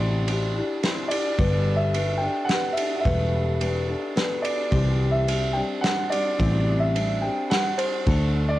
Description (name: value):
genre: folk rock and heartland rock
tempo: 108 BPM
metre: 3/4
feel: straight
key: unclear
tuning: A4 = 441 Hz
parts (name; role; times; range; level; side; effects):
- dark concert grand piano; melody; 0.0-8.6 s; C5 to G5; -27 LUFS; right 1 dB; cassette tape, analog delay
- picked steel-string acoustic guitar; accompaniment; 0.0-8.6 s; G2 to A4; -28 LUFS; left 2 dB; cassette tape
- picked electric bass; bass; 0.0-8.6 s; E1 to D2; -23 LUFS; equal; none
- loose indie drum kit; drums; 0.3-8.2 s; kick drum, ride cymbal, snare drum; -28 LUFS; right 1 dB; cassette tape
room: light reverb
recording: home recording on cassette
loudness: -21 LUFS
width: side -15 dB against mid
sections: 0.0-8.6 A section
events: none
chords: 0.0 Cadd9; 1.4 Gadd9; 4.7 Cadd9; 8.1 D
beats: 0.27 0.83 | 1.38 1.94 2.50 | 3.05 3.61 4.17 | 4.72 5.28 5.83 | 6.39 6.95 7.50 | 8.06